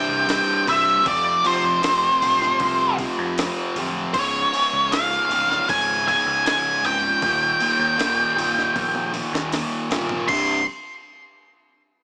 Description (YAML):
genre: quiet-loud alternative rock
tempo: 78 BPM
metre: 4/4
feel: straight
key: unclear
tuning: A4 = 441 Hz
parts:
  - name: octave-fuzz lead guitar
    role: melody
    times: 0.0-10.6 s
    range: C5 to C6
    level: -22 LUFS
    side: equal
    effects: distortion
  - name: fuzz guitar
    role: riff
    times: 0.0-10.6 s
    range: C2 to F3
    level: -27 LUFS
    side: equal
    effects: distortion
  - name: overdriven picked electric bass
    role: bass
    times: 0.1-10.6 s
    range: C1 to F2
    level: -37 LUFS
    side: equal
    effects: none
  - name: jungle sampler-style drum kit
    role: drums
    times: 0.3-10.5 s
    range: crash cymbal, hi-hat, kick drum, snare drum, toms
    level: -33 LUFS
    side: equal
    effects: none
room: light reverb, digital ambience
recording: small speaker sound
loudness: -21 LUFS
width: mono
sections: 0.0-10.3 A section; 10.3-12.0 B section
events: drum fill 8.8-10.3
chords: 0.0 C; 1.1 F5; 4.1 Db; 7.2 Eb; 10.3 C5